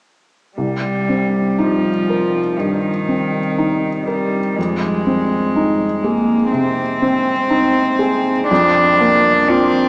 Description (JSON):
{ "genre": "neoclassical piano and strings", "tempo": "60 BPM", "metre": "4/4", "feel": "rubato", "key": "C minor", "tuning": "A4 = 441 Hz", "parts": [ { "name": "rich cello", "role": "second line", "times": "0.6-9.9 s", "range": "Eb3 to D4", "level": "-16 LUFS", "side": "equal", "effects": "none" }, { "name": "felt-muted upright piano", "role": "accompaniment", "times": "0.6-9.9 s", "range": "C2 to Bb4", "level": "-18 LUFS", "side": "equal", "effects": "none" } ], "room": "wet cathedral reverb, RT60 6.5 s", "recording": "in a vast, echoing space, small speaker sound", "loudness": "-14 LUFS", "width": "side -28 dB against mid", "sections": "0.6-9.9 A section", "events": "none", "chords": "0.6 Cm7; 4.6 Fm7; 8.5 Bb/F" }